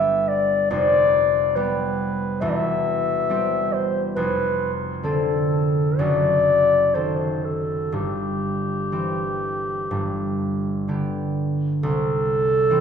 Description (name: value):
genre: classical, romantic duo for clarinet and harp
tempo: 60-71 BPM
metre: 4/4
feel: rubato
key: C major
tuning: A4 = 440 Hz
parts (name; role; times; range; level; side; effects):
- dark clarinet; melody; 0.0-12.8 s; G4 to E5; -21 LUFS; left 2 dB; none
- concert harp; accompaniment; 0.0-12.8 s; E1 to A4; -24 LUFS; right 1 dB; none
room: wet recital hall reverb, RT60 1.4 s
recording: heard from further back in the room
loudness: -19 LUFS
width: side -7 dB against mid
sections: 0.0-11.8 A section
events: none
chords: 0.0 G; 0.7 G7/F; 2.4 C/E; 4.2 Dm7/F; 6.0 F#dim7; 7.9 C/G; 9.9 G; 11.8 C5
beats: | 0.70 1.55 2.42 3.30 | 4.17 5.04 6.00 6.94 | 7.93 8.92 9.90 10.88 | 11.83 12.70